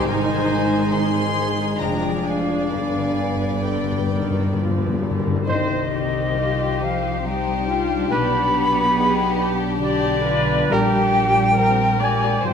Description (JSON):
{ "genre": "classical, slow romantic movement for symphony orchestra", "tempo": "64-72 BPM", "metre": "3/4", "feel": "rubato", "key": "unclear", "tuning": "A4 = 436 Hz", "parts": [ { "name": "warm studio violin section", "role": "melody", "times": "0.0-12.5 s", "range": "G4 to C6", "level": "-32 LUFS", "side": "left 4 dB", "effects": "none" }, { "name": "dark studio violin section", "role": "second line", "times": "0.0-12.5 s", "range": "Bb3 to D5", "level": "-28 LUFS", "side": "left 5 dB", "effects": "none" }, { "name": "silver concert flute", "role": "second line", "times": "0.0-12.5 s", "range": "D5 to B5", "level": "-23 LUFS", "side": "left 1 dB", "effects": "none" }, { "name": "warm studio viola section", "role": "accompaniment", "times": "0.0-12.5 s", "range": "D3 to D5", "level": "-27 LUFS", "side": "right 1 dB", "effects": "none" }, { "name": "mellow French horn section", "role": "sustained chords", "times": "0.0-12.5 s", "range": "F3 to F4", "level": "-27 LUFS", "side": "left 3 dB", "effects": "none" }, { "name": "concert harp", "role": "arpeggios", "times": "0.0-12.5 s", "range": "F2 to G5", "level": "-28 LUFS", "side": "left 10 dB", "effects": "none" }, { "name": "mellow trumpet", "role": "stabs", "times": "0.0-12.5 s", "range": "Bb4 to D5", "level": "-29 LUFS", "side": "right 3 dB", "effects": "none" }, { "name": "dark studio double bass section", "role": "bass", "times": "0.0-12.5 s", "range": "F1 to C2", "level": "-27 LUFS", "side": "right 5 dB", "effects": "none" }, { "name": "warm studio cello section", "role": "bass", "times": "0.0-12.5 s", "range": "F2 to B3", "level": "-27 LUFS", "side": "right 2 dB", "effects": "none" }, { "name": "timpani", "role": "percussion", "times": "2.7-6.8 s", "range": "G2 to C3", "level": "-25 LUFS", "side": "left 2 dB", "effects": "none" } ], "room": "moderate scoring stage reverb, RT60 2.0 s", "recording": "none", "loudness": "-18 LUFS", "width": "side -7 dB against mid", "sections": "0.0-5.5 A section; 5.5-12.5 B section", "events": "timpani fill 2.7-5.5", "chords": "0.1 Ab; 1.8 Ddim/F; 2.7 G; 5.5 Cm; 8.1 G/B; 10.7 Gm/Bb" }